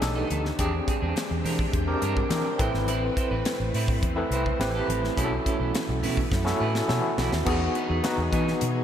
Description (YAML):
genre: polished 1980s jazz-funk pop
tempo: 105 BPM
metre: 4/4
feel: straight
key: unclear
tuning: A4 = 440 Hz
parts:
  - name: overdriven tine electric piano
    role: accompaniment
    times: 0.0-8.8 s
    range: B3 to B4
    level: -28 LUFS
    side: left 1 dB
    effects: medium tremolo, wide subtle chorus
  - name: string machine, full ensemble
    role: sustained chords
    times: 0.0-8.8 s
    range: D#3 to G5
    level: -35 LUFS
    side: equal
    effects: ensemble chorus
  - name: electric guitar through a small old amp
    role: riff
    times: 0.0-8.8 s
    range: B3 to C5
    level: -34 LUFS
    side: right 6 dB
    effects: lush chorus
  - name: vintage muted fingered electric bass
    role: bass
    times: 0.0-8.8 s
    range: G#1 to E3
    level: -29 LUFS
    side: equal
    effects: none
  - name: crisp fusion drum kit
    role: drums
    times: 0.0-8.7 s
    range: crash cymbal, hi-hat, kick drum, snare drum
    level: -30 LUFS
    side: equal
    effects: none
  - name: congas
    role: percussion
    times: 0.0-8.8 s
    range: none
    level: -41 LUFS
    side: left 2 dB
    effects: none
room: moderate lush hall reverb, RT60 2.6 s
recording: bright 1980s-style digital production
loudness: -23 LUFS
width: side -9 dB against mid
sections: 0.0-7.5 A section; 7.5-8.8 B section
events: drum fill 6.3-7.5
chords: 0.0 B7alt; 0.6 E7alt; 2.6 Amadd9; 4.6 Am7; 5.2 B9sus4; 7.5 Emaj7